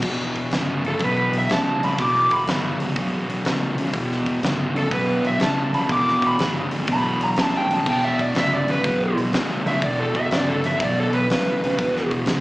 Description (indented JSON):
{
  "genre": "blues rock power trio and southern rock",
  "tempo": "122 BPM",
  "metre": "4/4",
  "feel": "swing 67% on 8ths",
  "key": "E minor",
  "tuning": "A4 = 439 Hz",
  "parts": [
    { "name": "fuzz guitar", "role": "riff", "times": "0.0-12.4 s", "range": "E2 to C#3", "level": "-23 LUFS", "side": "equal", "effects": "distortion, slapback echo" },
    { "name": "vintage muted picked electric bass", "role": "bass", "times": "0.0-12.4 s", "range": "E1 to C2", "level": "-29 LUFS", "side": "equal", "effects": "none" },
    { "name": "huge arena drum kit", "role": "drums", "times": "0.0-12.4 s", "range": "crash cymbal, hi-hat, kick drum, snare drum", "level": "-27 LUFS", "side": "equal", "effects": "none" },
    { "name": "lead guitar through a small cranked amp", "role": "second line", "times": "0.9-12.1 s", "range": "A4 to D6", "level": "-22 LUFS", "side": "equal", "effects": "overdrive, plate reverb, slapback echo" }
  ],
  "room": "moderate club reverb, RT60 0.5 s",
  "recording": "live gig heard through the venue's PA, club reverb, small speaker sound",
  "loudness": "-19 LUFS",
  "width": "side -19 dB against mid",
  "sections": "0.0-12.4 A section",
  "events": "lead electric guitar solo 0.0-12.4",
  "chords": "0.0 Em"
}